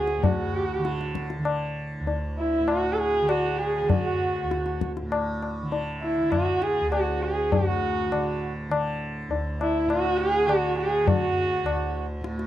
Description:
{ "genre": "indian classical, Hindustani", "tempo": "100 BPM", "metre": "3/4", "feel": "straight", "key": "D raga yaman", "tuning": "A4 = 440 Hz", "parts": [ { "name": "dark sarangi", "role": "melody", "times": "0.0-12.0 s", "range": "E4 to A4", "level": "-25 LUFS", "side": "right 1 dB", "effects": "none" }, { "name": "hand-pumped harmonium", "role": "second line", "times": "0.0-12.1 s", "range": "E4 to G#4", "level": "-33 LUFS", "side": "right 9 dB", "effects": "none" }, { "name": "tanpura", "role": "drone", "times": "0.0-12.5 s", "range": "D2 to D3", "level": "-31 LUFS", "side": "right 1 dB", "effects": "none" }, { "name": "tabla", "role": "percussion", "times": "0.1-12.5 s", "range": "none", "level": "-27 LUFS", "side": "left 4 dB", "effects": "none" } ], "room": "light reverb", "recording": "dry, close 1970s-style studio recording", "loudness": "-23 LUFS", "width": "side -12 dB against mid", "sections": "0.0-7.5 A section; 7.5-12.5 B section", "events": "speeding up 0.0-12.5", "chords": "none", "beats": "| 0.23 0.85 1.46 | 2.08 2.69 3.29 | 3.90 4.51 5.12 | 5.72 6.32 6.92 | 7.52 8.12 8.71 | 9.31 9.90 10.49 | 11.08 11.66 12.25" }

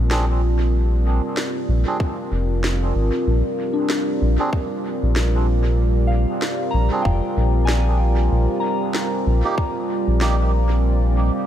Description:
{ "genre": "ambient dub", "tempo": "95 BPM", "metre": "4/4", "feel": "swing 58% on 16ths", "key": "Bb mixolydian", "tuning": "A4 = 440 Hz", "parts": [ { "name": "deep dark ambient pad", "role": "sustained chords", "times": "0.0-11.5 s", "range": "G3 to D5", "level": "-24 LUFS", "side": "right 1 dB", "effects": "chorus, built-in reverb" }, { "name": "soft synth bell", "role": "arpeggios", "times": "0.0-11.5 s", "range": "D4 to Bb5", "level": "-29 LUFS", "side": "left 3 dB", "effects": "chorus, phaser, dub echo" }, { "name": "round analog bass", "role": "bass", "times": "0.0-11.3 s", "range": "F1 to Bb1", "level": "-18 LUFS", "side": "equal", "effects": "none" }, { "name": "melodica", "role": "stabs", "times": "0.1-10.4 s", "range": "Bb3 to Ab4", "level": "-30 LUFS", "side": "right 2 dB", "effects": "dub echo" }, { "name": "electronic snare drum", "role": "drums", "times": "0.1-10.4 s", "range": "none", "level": "-29 LUFS", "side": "equal", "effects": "dub echo" }, { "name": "electronic kick drum", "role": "drums", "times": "2.0-9.7 s", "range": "none", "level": "-23 LUFS", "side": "equal", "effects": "overdrive" } ], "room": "light reverb", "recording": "none", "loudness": "-18 LUFS", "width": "side -11 dB against mid", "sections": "0.0-11.5 A section", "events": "none", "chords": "0.0 Bb9; 8.3 Eb (rootless)", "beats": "0.11 | 0.74 1.37 2.00 2.63 | 3.27 3.90 4.53 5.16 | 5.79 6.42 7.06 7.69 | 8.32 8.95 9.58 10.21 | 10.85" }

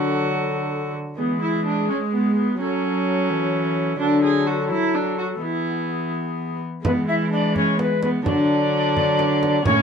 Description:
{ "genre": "classical, renaissance-style consort dance", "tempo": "85 BPM (dotted quarters)", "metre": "6/8", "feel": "straight", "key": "E mixolydian", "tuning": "A4 = 440 Hz", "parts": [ { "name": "alto recorder", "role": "melody", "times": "0.0-9.8 s", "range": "G#4 to E5", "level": "-26 LUFS", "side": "left 5 dB", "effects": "none" }, { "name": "rich viola", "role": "second line", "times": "0.0-9.8 s", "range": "B3 to G#4", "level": "-24 LUFS", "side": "right 4 dB", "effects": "none" }, { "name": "lute", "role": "accompaniment", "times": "0.0-9.8 s", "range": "A2 to F#4", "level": "-26 LUFS", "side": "left 5 dB", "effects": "none" }, { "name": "warm viola", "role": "accompaniment", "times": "0.0-9.8 s", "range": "F#3 to B3", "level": "-27 LUFS", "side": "left 3 dB", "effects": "none" }, { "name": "rich cello", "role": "bass", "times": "0.0-9.8 s", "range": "A2 to G#3", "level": "-26 LUFS", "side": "right 1 dB", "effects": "none" }, { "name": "frame drum", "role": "percussion", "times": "6.8-9.8 s", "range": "none", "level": "-26 LUFS", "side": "right 2 dB", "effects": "none" } ], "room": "light reverb", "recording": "dark, warm production", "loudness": "-19 LUFS", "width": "side -6 dB against mid", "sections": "0.0-6.8 A section; 6.8-9.8 A section", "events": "none", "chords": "0.0 D; 1.2 E; 2.6 F#m; 4.0 D; 5.4 E; 8.3 D", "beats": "0.47 | 1.18 1.89 | 2.59 3.30 | 4.00 4.71 | 5.42 6.13 | 6.85 7.56 | 8.26 8.96 | 9.67" }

